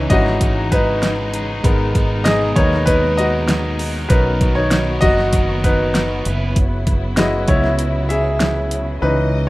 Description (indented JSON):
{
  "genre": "piano-driven pop",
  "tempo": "98 BPM",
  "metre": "4/4",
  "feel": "straight",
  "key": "unclear",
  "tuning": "A4 = 440 Hz",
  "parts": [
    { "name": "clear concert grand piano", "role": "accompaniment", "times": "0.0-9.5 s", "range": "E3 to E5", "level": "-18 LUFS", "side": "left 1 dB", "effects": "none" },
    { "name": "warm studio string section", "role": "sustained chords", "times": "0.0-9.5 s", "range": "B2 to D#5", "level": "-25 LUFS", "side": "equal", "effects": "none" },
    { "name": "crunchy overdriven guitar", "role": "riff", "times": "0.0-6.6 s", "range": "G#2 to B4", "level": "-28 LUFS", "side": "right 2 dB", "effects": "none" },
    { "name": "fingered electric bass", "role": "bass", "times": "0.0-9.5 s", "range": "F#1 to D#2", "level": "-20 LUFS", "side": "equal", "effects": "none" },
    { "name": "pop drum kit", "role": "drums", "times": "0.1-8.9 s", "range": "hi-hat, kick drum, snare drum", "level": "-18 LUFS", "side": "equal", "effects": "overdrive" }
  ],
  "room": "digital ambience",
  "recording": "rough home demo mix",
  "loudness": "-14 LUFS",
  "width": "side -18 dB against mid",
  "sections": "0.0-9.5 A section",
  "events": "grand piano solo 0.0-9.5",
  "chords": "0.0 C#madd9; 1.6 G#madd9; 4.1 Bmaj7; 6.3 F#7sus4",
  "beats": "0.41 1.03 | 1.64 2.26 2.87 3.49 | 4.10 4.72 5.33 5.95 | 6.56 7.18 7.79 8.41 | 9.02"
}